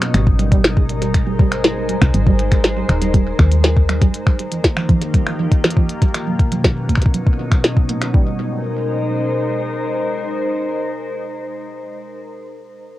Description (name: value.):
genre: IDM.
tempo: 120 BPM.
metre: 4/4.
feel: straight.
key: unclear.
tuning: A4 = 436 Hz.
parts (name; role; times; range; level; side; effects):
glassy FM pad; sustained chords; 0.0-12.1 s; B2 to C5; -22 LUFS; left 1 dB; ensemble chorus, built-in reverb, sidechain pumping, cassette tape.
glitchy drum kit; drums; 0.0-8.1 s; finger snaps, hi-hat, snare drum; -20 LUFS; equal; overdrive, cassette tape, tape echo.
warbly dusty pluck; arpeggios; 0.1-8.4 s; F3 to D#4; -23 LUFS; right 4 dB; chorus, cassette tape, tape echo.
woody FM bass; bass; 0.1-4.1 s; Eb1 to Eb2; -18 LUFS; equal; none.
electronic kick drum; drums; 0.3-8.2 s; none; -14 LUFS; equal; overdrive, cassette tape.
room: wet booth ambience, RT60 0.2 s.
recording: home recording on cassette.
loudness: -14 LUFS.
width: side -15 dB against mid.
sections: 0.1-8.1 A section; 8.1-12.1 B section.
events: filter sweep on synth pluck 0.1-8.1.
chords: 0.1 Abmaj9; 4.1 Ebadd9; 6.1 Bmaj9; 8.1 Abadd9.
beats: | 0.14 0.64 1.14 1.64 | 2.14 2.64 3.14 3.64 | 4.14 4.64 5.14 5.64 | 6.14 6.64 7.14 7.64 | 8.14 8.64 9.14 9.64 | 10.14 10.64 11.14 11.64.